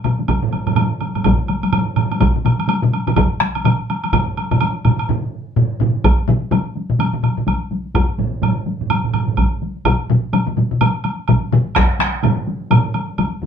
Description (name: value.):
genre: japanese traditional, taiko drum ensemble.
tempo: 126 BPM.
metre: 4/4.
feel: swing 60% on 16ths.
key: none.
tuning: none.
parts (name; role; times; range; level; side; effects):
taiko ensemble; percussion; 0.0-13.5 s; none; -21 LUFS; left 2 dB; none.
taiko ensemble; percussion; 0.0-12.8 s; none; -18 LUFS; left 2 dB; none.
woodblock; percussion; 0.0-13.3 s; none; -23 LUFS; right 3 dB; none.
taiko ensemble; percussion; 0.3-13.5 s; none; -19 LUFS; equal; none.
taiko ensemble; percussion; 0.4-12.8 s; none; -21 LUFS; right 6 dB; none.
room: wet studio ambience, RT60 0.5 s.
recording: band playing live in one room.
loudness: -15 LUFS.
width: side -8 dB against mid.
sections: 0.0-6.0 A section; 6.0-13.5 B section.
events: none.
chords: none.